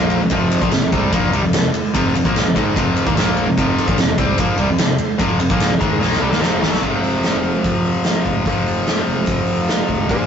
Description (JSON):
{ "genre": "classic rock", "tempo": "147 BPM", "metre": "4/4", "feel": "straight", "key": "F mixolydian", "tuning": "A4 = 444 Hz", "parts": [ { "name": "bright tonewheel organ", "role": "sustained chords", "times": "0.0-6.8 s", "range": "F4 to A5", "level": "-35 LUFS", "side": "right 3 dB", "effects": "none" }, { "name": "cranked stack guitar", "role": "riff", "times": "0.0-10.3 s", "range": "F2 to F4", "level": "-25 LUFS", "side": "right 5 dB", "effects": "overdrive" }, { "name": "tight distorted guitar", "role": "riff", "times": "0.0-10.3 s", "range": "F2 to C4", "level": "-18 LUFS", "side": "left 2 dB", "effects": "distortion" }, { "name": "fuzz fingered electric bass", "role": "bass", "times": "0.0-10.3 s", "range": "F1 to F2", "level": "-24 LUFS", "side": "right 1 dB", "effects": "overdrive" }, { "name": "big rock drum kit", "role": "drums", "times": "0.1-10.2 s", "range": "crash cymbal, hi-hat, kick drum, ride cymbal, snare drum", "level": "-19 LUFS", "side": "right 1 dB", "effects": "none" }, { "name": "electric slide guitar", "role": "second line", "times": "10.1-10.3 s", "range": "Ab4 to C5", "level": "-21 LUFS", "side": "right 1 dB", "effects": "none" } ], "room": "moderate studio reverb, RT60 0.6 s", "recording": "rough rehearsal-room recording, tube saturation, nothing above 7.7 kHz", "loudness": "-15 LUFS", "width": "side -8 dB against mid", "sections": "0.0-6.8 A section; 6.8-10.3 B section", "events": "drum fill 6.0-6.8", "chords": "0.0 F" }